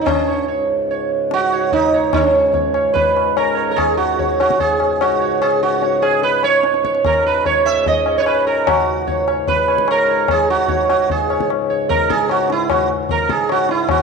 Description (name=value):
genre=indian classical, Hindustani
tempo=148 BPM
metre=4/4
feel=straight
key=C# raga bhimpalasi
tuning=A4 = 440 Hz
part: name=sitar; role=melody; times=0.0-14.0 s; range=C#4 to E5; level=-16 LUFS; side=right 6 dB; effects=none
part: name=pedal harmonium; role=drone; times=0.0-14.0 s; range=C#2 to G#2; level=-26 LUFS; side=left 6 dB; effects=none
part: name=tabla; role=percussion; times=0.1-14.0 s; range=none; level=-20 LUFS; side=left 10 dB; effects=none
room=wet echo chamber reverb, RT60 1.7 s, small room ambience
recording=1960s-style stereo with parts hard left and right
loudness=-14 LUFS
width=side -4 dB against mid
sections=0.0-2.1 A section; 2.1-14.0 B section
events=speeding up 0.0-14.0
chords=none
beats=0.07 | 0.49 0.90 1.31 1.73 | 2.14 2.55 2.96 3.37 | 3.78 4.19 4.60 5.01 | 5.42 5.83 6.24 6.65 | 7.05 7.46 7.87 8.27 | 8.68 9.08 9.48 9.89 | 10.29 10.69 11.10 11.50 | 11.90 12.30 12.70 13.10 | 13.50 13.90